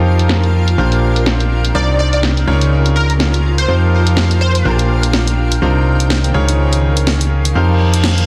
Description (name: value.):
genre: piano house.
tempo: 124 BPM.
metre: 4/4.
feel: swing 58% on 16ths.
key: unclear.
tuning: A4 = 441 Hz.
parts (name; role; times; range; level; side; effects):
bright grand piano; riff; 0.0-8.3 s; Bb2 to Db5; -19 LUFS; equal; digital delay.
solid FM bass; bass; 0.0-8.3 s; Bb1 to F2; -16 LUFS; equal; none.
granular cloud pad; texture; 0.0-8.3 s; Eb3 to G5; -26 LUFS; equal; built-in reverb.
house drum kit; drums; 0.2-8.3 s; hi-hat, snare drum; -21 LUFS; equal; low-pass filter on snare, low-pass filter on hats, low-pass filter on room.
plucky unison lead; melody; 1.7-4.7 s; Bb4 to D5; -23 LUFS; equal; ensemble chorus, digital delay.
reverse cymbal; sound effects; 7.7-8.3 s; none; -25 LUFS; equal; none.
room: digital ambience.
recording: dense, heavily limited modern master.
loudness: -14 LUFS.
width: mono.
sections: 0.0-8.3 A section.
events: reverse cymbal 7.7-8.3.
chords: 0.0 F9sus4; 0.8 Bb69; 1.7 Cm11; 2.5 Db69; 3.7 F9sus4; 4.7 Bb69; 5.6 Cm11; 6.3 Db69; 7.6 F9sus4.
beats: 0.30 | 0.78 1.26 1.75 2.23 | 2.72 3.20 3.68 4.17 | 4.65 5.13 5.62 6.10 | 6.59 7.07 7.55 8.04.